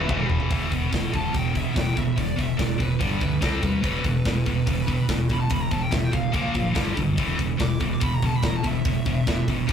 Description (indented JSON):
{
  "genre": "heavy metal",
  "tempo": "144 BPM",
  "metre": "4/4",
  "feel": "straight",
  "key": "E minor",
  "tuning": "A4 = 440 Hz",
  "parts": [
    { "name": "high-gain lead guitar", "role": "melody", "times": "0.0-9.5 s", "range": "A4 to D6", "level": "-32 LUFS", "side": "equal", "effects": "distortion" },
    { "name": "scooped high-gain guitar", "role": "riff", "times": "0.0-9.7 s", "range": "E2 to C4", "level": "-24 LUFS", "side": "equal", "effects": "distortion" },
    { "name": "growling fingered electric bass", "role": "bass", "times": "0.0-9.7 s", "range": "E1 to D#2", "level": "-32 LUFS", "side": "equal", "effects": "overdrive" },
    { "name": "tight metal drum kit", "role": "drums", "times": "0.1-9.7 s", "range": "hi-hat, kick drum, snare drum, toms", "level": "-26 LUFS", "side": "equal", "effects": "none" }
  ],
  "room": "moderate small room ambience, RT60 0.5 s",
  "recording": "rough rehearsal-room recording, tube saturation",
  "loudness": "-21 LUFS",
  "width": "side -8 dB against mid",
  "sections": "0.5-9.7 A section",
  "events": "drum fill 0.0-0.5; lead electric guitar solo 0.5-9.7",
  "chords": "0.0 E5; 3.0 G5; 3.4 C5; 3.8 E5; 6.3 A#5; 6.8 G5; 7.2 E5"
}